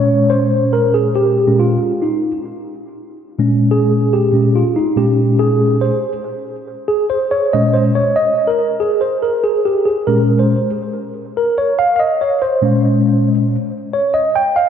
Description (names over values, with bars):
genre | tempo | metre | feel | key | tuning
hip hop | 94 BPM | 4/4 | swing 65% on 16ths | Bb dorian | A4 = 444 Hz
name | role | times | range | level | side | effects
mellow tine electric piano | solo | 0.0-14.7 s | Bb2 to G5 | -13 LUFS | equal | medium stereo tremolo, analog delay
room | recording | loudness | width
wet lush hall reverb, RT60 2.8 s | dreamy mix soaked in reverb | -13 LUFS | side -8 dB against mid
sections
0.0-14.7 A section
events
tine electric piano solo 0.0-14.7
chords
0.0 Bbm7